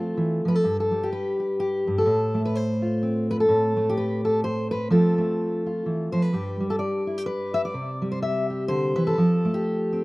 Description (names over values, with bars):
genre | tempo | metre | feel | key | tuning
folk, solo fingerstyle acoustic guitar | 127 BPM | 3/4 | swing 58% on 8ths | unclear | A4 = 441 Hz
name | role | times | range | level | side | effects
fingerpicked steel-string acoustic guitar | solo | 0.0-10.0 s | G2 to E5 | -22 LUFS | equal | none
room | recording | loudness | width
little or no reverb | recorded outdoors, with no room sound | -22 LUFS | side -21 dB against mid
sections
0.6-10.0 A section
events
none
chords
0.0 F; 0.6 N.C.; 2.1 F/A; 3.5 Am; 4.9 F; 6.3 G; 7.7 C; 9.2 F